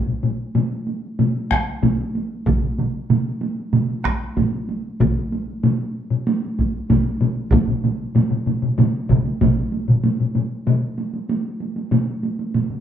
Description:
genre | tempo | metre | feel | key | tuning
japanese traditional, taiko drum ensemble | 95 BPM | 4/4 | straight | none | none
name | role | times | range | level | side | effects
solo taiko drums | percussion | 0.1-12.7 s | none | -23 LUFS | right 4 dB | none
solo taiko drums | percussion | 0.1-12.1 s | none | -21 LUFS | left 4 dB | none
taiko ensemble | percussion | 1.5-9.6 s | none | -22 LUFS | equal | none
taiko ensemble | percussion | 2.5-12.8 s | none | -22 LUFS | right 4 dB | none
room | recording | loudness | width
wet large studio reverb, RT60 1.0 s | band playing live in one room | -18 LUFS | side -10 dB against mid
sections
0.0-10.0 A section; 10.0-12.8 B section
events
none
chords
none

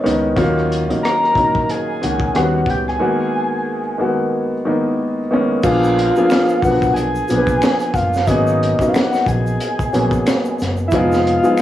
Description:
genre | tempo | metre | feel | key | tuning
R&B, neo-soul | 91 BPM | 4/4 | swing 57% on 16ths | unclear | A4 = 442 Hz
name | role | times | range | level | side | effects
soft octave-layered synth lead | melody | 0.0-11.6 s | Eb5 to Bb5 | -19 LUFS | equal | chorus, phaser
warm upright piano | accompaniment | 0.0-11.6 s | Eb3 to Cb5 | -17 LUFS | equal | cassette tape
fingered electric bass | bass | 0.1-11.4 s | F1 to Eb2 | -22 LUFS | equal | none
crunchy breakbeat drum kit | drums | 0.1-11.4 s | crash cymbal, hi-hat, kick drum, rim click, snare drum | -22 LUFS | equal | none
tube shaker and finger snaps | percussion | 5.6-11.6 s | none | -35 LUFS | left 2 dB | none
room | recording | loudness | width
light reverb, small room ambience | home recording on cassette, faint mains hum | -14 LUFS | side -12 dB against mid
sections
0.0-5.6 A section; 5.6-11.6 B section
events
none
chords
0.4 Ebm9; 2.3 Eb7alt; 3.0 Abm9/Eb; 5.6 Bb7b9; 8.3 Abm11; 10.9 Fm7b5

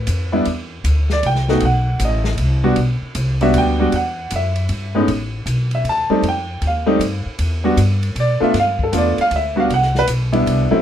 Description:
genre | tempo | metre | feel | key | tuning
jazz piano trio | 156 BPM | 3/4 | swing 66% on 8ths | E minor | A4 = 440 Hz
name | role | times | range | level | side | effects
clear grand piano | melody | 0.0-10.8 s | A2 to A5 | -17 LUFS | equal | none
upright bass | bass | 0.0-10.8 s | A1 to B2 | -19 LUFS | equal | none
open jazz drum kit | drums | 0.1-10.6 s | hi-hat, kick drum, ride cymbal, snare drum | -29 LUFS | equal | none
room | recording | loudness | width
little or no reverb | minimal, uncompressed stereo recording | -15 LUFS | side -10 dB against mid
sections
0.0-5.1 A section; 5.1-10.8 A section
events
grand piano solo 0.0-10.8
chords
0.5 Cadd9; 1.6 B7; 2.8 Em9; 5.1 Asus2; 6.2 F7sus2; 7.4 Em7; 8.5 G9; 9.7 Cmaj7

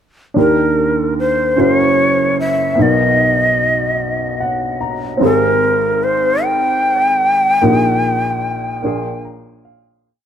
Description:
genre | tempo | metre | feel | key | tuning
gospel | 50 BPM (dotted quarters) | 6/8 | straight | unclear | A4 = 440 Hz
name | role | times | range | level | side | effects
warm upright piano | accompaniment | 0.3-10.1 s | Gb1 to A#5 | -16 LUFS | equal | none
breathy bright shakuhachi | melody | 0.4-9.3 s | Bb4 to G5 | -15 LUFS | equal | analog delay
room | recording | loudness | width
light reverb | echo-heavy mix | -12 LUFS | side -9 dB against mid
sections
0.4-10.0 verse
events
upright piano fill 4.0-5.2, 8.8-10.0; fade-out 7.6-10.0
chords
0.4 Ebmaj7; 1.6 Gb7; 2.8 Bmaj7; 5.2 Abmaj7; 7.6 Bb7sus4; 8.8 Bb7

